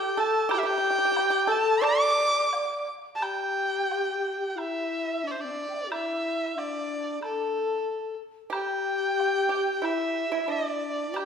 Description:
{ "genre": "chinese traditional, Chinese chamber ensemble", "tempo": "91 BPM", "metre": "4/4", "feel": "rubato", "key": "unclear", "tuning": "A4 = 439 Hz", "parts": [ { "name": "rich erhu", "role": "melody", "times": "0.0-11.3 s", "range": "A4 to D6", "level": "-27 LUFS", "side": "right 1 dB", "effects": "none" }, { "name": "low xiao", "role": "second line", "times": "0.0-11.3 s", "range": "C4 to G5", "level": "-29 LUFS", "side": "left 4 dB", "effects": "none" }, { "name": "pipa", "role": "second line", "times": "0.0-2.8, 8.5-11.3 s", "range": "D4 to D5", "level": "-31 LUFS", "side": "right 6 dB", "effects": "none" }, { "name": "woodblock", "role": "percussion", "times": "0.5-11.3 s", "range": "none", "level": "-38 LUFS", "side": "right 1 dB", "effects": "none" } ], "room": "wet concert hall reverb, RT60 1.7 s", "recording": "recorded in a church or concert hall", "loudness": "-24 LUFS", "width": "side -7 dB against mid", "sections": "0.0-3.2 A section; 3.2-11.3 B section", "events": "none", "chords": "none" }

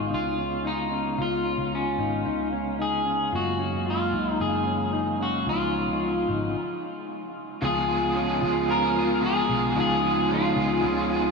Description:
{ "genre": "dream pop", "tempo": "112 BPM", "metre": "4/4", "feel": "straight", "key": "Db mixolydian", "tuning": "A4 = 440 Hz", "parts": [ { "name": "electric guitar at the edge of break-up", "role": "melody", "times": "0.0-11.3 s", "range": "Db4 to Bb4", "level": "-27 LUFS", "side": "left 1 dB", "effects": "wide subtle chorus, tape echo" }, { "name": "mellow tonewheel organ", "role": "sustained chords", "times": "0.0-11.3 s", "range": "Db3 to F5", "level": "-28 LUFS", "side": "right 1 dB", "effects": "chorus vibrato, slow rotary speaker" }, { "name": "mellow electric guitar", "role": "arpeggios", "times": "0.0-11.3 s", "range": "Db4 to Ab4", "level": "-30 LUFS", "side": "left 3 dB", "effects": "wide subtle chorus, tape echo" }, { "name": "vintage muted picked electric bass", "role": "bass", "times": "0.0-11.3 s", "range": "Gb1 to Db2", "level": "-35 LUFS", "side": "left 1 dB", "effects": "none" }, { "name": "overdriven electric guitar", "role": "accompaniment", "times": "7.6-11.3 s", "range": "Db3 to Ab4", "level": "-29 LUFS", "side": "right 2 dB", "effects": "tremolo, ensemble chorus" } ], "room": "wet huge ambient reverb, RT60 8.1 s", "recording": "dreamy mix soaked in reverb, studio ambience", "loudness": "-23 LUFS", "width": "side -4 dB against mid", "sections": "0.0-7.6 A section; 7.6-11.3 B section", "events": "stop 6.5-7.6", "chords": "0.0 Db7; 3.3 Gbmaj9; 5.5 Db9; 7.6 Db7" }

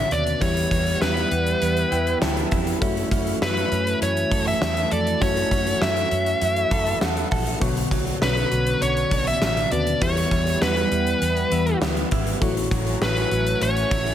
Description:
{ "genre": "1980s-style pop", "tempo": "100 BPM", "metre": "4/4", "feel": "straight", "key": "unclear", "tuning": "A4 = 440 Hz", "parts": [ { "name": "smooth overdriven lead guitar", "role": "melody", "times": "0.0-14.1 s", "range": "B4 to E5", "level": "-24 LUFS", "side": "equal", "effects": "digital delay" }, { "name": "FM electric piano", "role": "accompaniment", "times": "0.0-14.1 s", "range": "A2 to B5", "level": "-28 LUFS", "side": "left 5 dB", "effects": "chorus" }, { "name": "phased analog pad", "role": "sustained chords", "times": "0.0-14.1 s", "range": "D3 to F#4", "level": "-30 LUFS", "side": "right 1 dB", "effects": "phaser, chorus" }, { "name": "direct-recorded clean electric guitar", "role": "riff", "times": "0.0-14.1 s", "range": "F#3 to A4", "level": "-31 LUFS", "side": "right 6 dB", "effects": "analog chorus, digital delay" }, { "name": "vintage muted fingered electric bass", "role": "bass", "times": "0.0-14.1 s", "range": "G#1 to F#2", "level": "-26 LUFS", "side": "equal", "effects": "none" }, { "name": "gated 80s drum kit", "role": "drums", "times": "0.1-14.1 s", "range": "hi-hat, kick drum, snare drum", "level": "-26 LUFS", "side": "equal", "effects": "none" } ], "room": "light reverb, small room ambience", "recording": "none", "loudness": "-19 LUFS", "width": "side -10 dB against mid", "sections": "0.0-14.1 A section", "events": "FM electric piano fill 1.6-2.8, 6.4-7.6", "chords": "0.4 Em; 2.8 F#m7; 7.6 Bmadd9; 10.0 Em; 12.4 A6" }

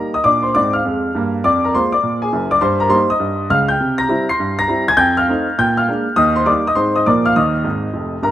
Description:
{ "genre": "jazz, stride piano", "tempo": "203 BPM", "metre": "4/4", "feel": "swing 65% on 8ths", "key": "Eb major", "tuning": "A4 = 440 Hz", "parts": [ { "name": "warm grand piano", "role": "solo", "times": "0.0-8.3 s", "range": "F1 to C7", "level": "-14 LUFS", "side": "equal", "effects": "none" } ], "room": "light reverb, small room ambience", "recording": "rough home demo mix", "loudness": "-14 LUFS", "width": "side -12 dB against mid", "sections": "0.0-8.3 A section", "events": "grand piano fill 7.7-8.3", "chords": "0.3 Bb7; 1.4 Bb7/F; 2.6 Eb/G; 3.8 C7; 5.0 F7; 5.6 Bb7; 6.2 Eb; 6.8 Ab; 7.1 Bb; 7.4 Eb" }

